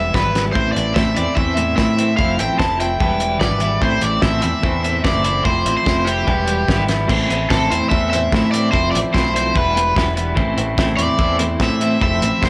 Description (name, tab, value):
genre	indie rock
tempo	147 BPM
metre	4/4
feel	straight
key	A minor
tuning	A4 = 440 Hz
part	cranked stack guitar	melody	0.0-12.5 s	G4 to A5	-23 LUFS	equal	overdrive, analog delay
part	clean electric guitar	riff	0.0-12.5 s	E2 to E4	-25 LUFS	equal	subtle chorus, analog delay
part	twelve-string electric guitar	riff	0.0-12.5 s	A2 to E4	-26 LUFS	equal	tremolo, analog delay
part	growling fingered electric bass	bass	0.0-12.5 s	E1 to A2	-24 LUFS	equal	overdrive
part	cloth-damped thuddy drum kit	drums	0.1-12.5 s	crash cymbal, hi-hat, kick drum, snare drum	-24 LUFS	equal	analog delay
room	light reverb, studio reverb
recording	echo-heavy mix, small room ambience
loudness	-17 LUFS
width	mono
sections	0.0-7.1 A section; 7.1-12.5 A section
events	none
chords	0.0 Em; 0.6 Am; 2.2 Fmaj7; 3.0 Em; 3.8 Am; 5.5 Fmaj7; 6.3 Em; 7.1 Am; 8.7 Fmaj7; 9.5 Em; 10.4 Am